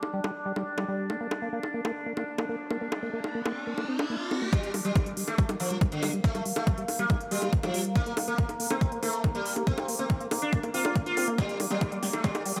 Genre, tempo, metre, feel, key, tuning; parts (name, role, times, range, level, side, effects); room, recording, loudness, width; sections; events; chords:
psychedelic trance; 140 BPM; 4/4; straight; G minor; A4 = 440 Hz
overtone-sweeping drone; sustained chords; 0.0-12.6 s; Bb3 to D4; -39 LUFS; equal; chorus, built-in reverb, sidechain pumping
big-room dance drum kit; drums; 0.0-12.6 s; bongos, hi-hat, snare drum; -36 LUFS; equal; overdrive
liquid acid bass; riff; 0.1-12.6 s; G3 to D4; -36 LUFS; equal; chorus, sidechain pumping, digital delay
riser; sound effects; 2.5-4.5, 12.6 s; -42 LUFS; equal
sitar; melody; 4.5-12.6 s; D3 to F4; -35 LUFS; equal; phaser, sidechain pumping, digital delay
electronic kick drum; drums; 4.5-12.3 s; -28 LUFS; equal; overdrive
moderate lush hall reverb, RT60 1.9 s; high-pass filter; -29 LUFS; mono
0.0-4.5 A section; 4.5-12.6 B section
riser 2.5-4.5; build-up 4.5-12.6; filter sweep on acid bass 4.5-12.6; drum fill 11.4-12.6
0.0 G5; 1.1 Bb; 4.5 Gm; 8.0 N.C.; 11.4 Gm